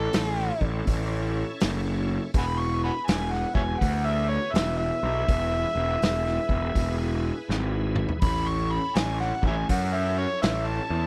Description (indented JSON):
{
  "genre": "blues rock power trio and southern rock",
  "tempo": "82 BPM",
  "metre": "4/4",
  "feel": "swing 64% on 8ths",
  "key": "E major",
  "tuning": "A4 = 440 Hz",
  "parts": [
    { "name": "overdriven harmonica", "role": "melody", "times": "0.0-11.1 s", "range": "A4 to C#6", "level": "-31 LUFS", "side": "equal", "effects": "none" },
    { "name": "bright tonewheel organ", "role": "sustained chords", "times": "0.0-11.1 s", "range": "B3 to C#5", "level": "-40 LUFS", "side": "equal", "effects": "slow rotary speaker, chorus vibrato" },
    { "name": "fuzz picked electric bass", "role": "bass", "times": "0.0-11.1 s", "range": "E1 to F#2", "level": "-29 LUFS", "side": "equal", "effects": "overdrive" },
    { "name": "vintage drum kit", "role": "drums", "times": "0.1-10.7 s", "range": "hi-hat, kick drum, snare drum, toms", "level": "-30 LUFS", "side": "equal", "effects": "none" }
  ],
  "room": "studio ambience",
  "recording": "none",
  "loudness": "-26 LUFS",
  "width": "mono",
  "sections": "0.0-11.1 A section",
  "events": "harmonica solo 0.0-11.1; drum fill 7.5-8.2",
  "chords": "0.0 A; 2.3 E; 8.2 A",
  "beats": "0.14 0.87 1.61 | 2.35 3.08 3.82 4.55 | 5.29 6.03 6.76 7.50 | 8.23 8.97 9.70 10.44"
}